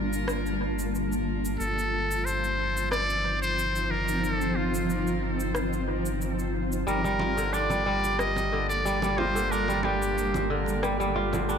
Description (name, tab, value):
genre	organic downtempo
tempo	91 BPM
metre	4/4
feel	straight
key	G minor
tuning	A4 = 440 Hz
part	granular cloud pad	sustained chords	0.0-11.6 s	F3 to A5	-31 LUFS	equal	built-in reverb
part	warm sub bass	bass	0.0-11.6 s	G1	-32 LUFS	equal	none
part	electronic shaker and rim click	drums	0.1-11.6 s	none	-36 LUFS	left 1 dB	studio reverb, analog delay
part	trumpet with metal mute	melody	1.6-10.5 s	F4 to Eb5	-29 LUFS	left 1 dB	dub echo
part	kora	arpeggios	6.9-11.6 s	D3 to F4	-28 LUFS	right 1 dB	tape echo
part	congas	percussion	7.0-11.5 s	none	-36 LUFS	right 3 dB	none
room	light reverb, studio ambience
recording	echo-heavy mix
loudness	-25 LUFS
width	side -7 dB against mid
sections	0.0-11.6 A section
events	none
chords	0.0 Gm7; 1.6 F7(no3)/G; 6.9 Gm7